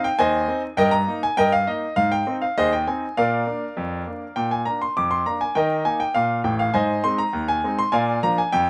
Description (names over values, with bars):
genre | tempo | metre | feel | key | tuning
ragtime piano | 101 BPM | 2/4 | straight | Eb major | A4 = 441 Hz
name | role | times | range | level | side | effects
clear grand piano | solo | 0.0-8.7 s | A1 to D6 | -22 LUFS | equal | none
room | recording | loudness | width
little or no reverb | recorded outdoors, with no room sound, vinyl crackle | -22 LUFS | mono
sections
0.0-8.7 A section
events
none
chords
0.0 Ab; 0.8 Eb/G; 2.0 Ab; 3.2 Bb; 5.6 Eb5; 6.7 Ab; 7.9 Bb